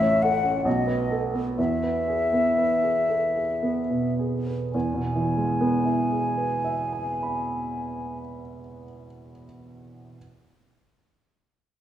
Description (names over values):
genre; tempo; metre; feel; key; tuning
classical, romantic duo for flute and grand piano; 52-74 BPM; 3/4; rubato; E major; A4 = 439 Hz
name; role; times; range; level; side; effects
mellow concert flute; melody; 0.0-8.2 s; D#5 to G#5; -25 LUFS; left 2 dB; none
warm baby grand piano; accompaniment; 0.0-10.2 s; A1 to B5; -26 LUFS; right 2 dB; none
room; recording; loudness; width
wet recital hall reverb, RT60 1.5 s; studio reverb; -22 LUFS; side -11 dB against mid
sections
0.0-4.7 A section; 4.7-8.0 B section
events
slowing down 0.0-4.7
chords
0.0 A; 0.7 B7; 1.6 E